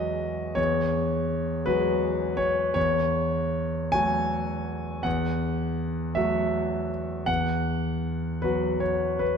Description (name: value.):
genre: neoclassical minimalist piano.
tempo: 54 BPM (dotted quarters).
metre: 6/8.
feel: uneven beats, rubato.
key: E major.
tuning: A4 = 440 Hz.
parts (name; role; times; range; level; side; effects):
clear concert grand piano; solo; 0.0-9.4 s; E2 to G#5; -24 LUFS; equal; none.
room: wet scoring stage reverb, RT60 1.6 s.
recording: none.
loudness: -24 LUFS.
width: side -6 dB against mid.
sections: 0.0-9.4 A section.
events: none.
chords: 0.0 Eadd9; 2.8 F#m/E; 7.3 Esus2.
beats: | 0.58 1.66 | 2.76 3.93 | 5.05 6.17 | 7.28 8.44.